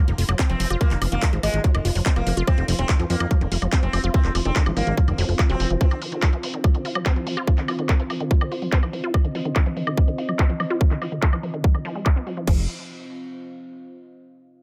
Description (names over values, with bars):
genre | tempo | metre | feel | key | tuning
psychedelic trance | 144 BPM | 4/4 | straight | unclear | A4 = 440 Hz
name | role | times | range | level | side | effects
unison pluck | riff | 0.0-12.7 s | Eb3 to F4 | -32 LUFS | equal | sidechain pumping, digital delay
deep dark ambient pad | texture | 1.6-14.1 s | C4 to F5 | -35 LUFS | equal | chorus, built-in reverb, sidechain pumping
fat analog bass | bass | 0.1-5.8, 12.5-12.7 s | Eb1 to F2 | -25 LUFS | equal | none
drum and bass drum kit | drums | 0.1-12.6 s | crash cymbal, handclaps, hi-hat, woodblock | -32 LUFS | equal | overdrive, low-pass filter on hats, low-pass filter on snare, low-pass filter on perc, low-pass filter on cymbals
electronic kick drum | drums | 0.4-12.6 s | none | -21 LUFS | equal | overdrive
sitar | melody | 0.5-5.7 s | Ab3 to C4 | -33 LUFS | equal | phaser, vintage 12-bit sampler grit, sidechain pumping, digital delay
room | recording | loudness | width
digital ambience | none | -22 LUFS | mono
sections
0.0-12.5 A section; 12.5-14.1 B section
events
filter sweep on drum 0.0-12.5; filter sweep on synth arpeggio sound 0.0-12.5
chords
0.0 F5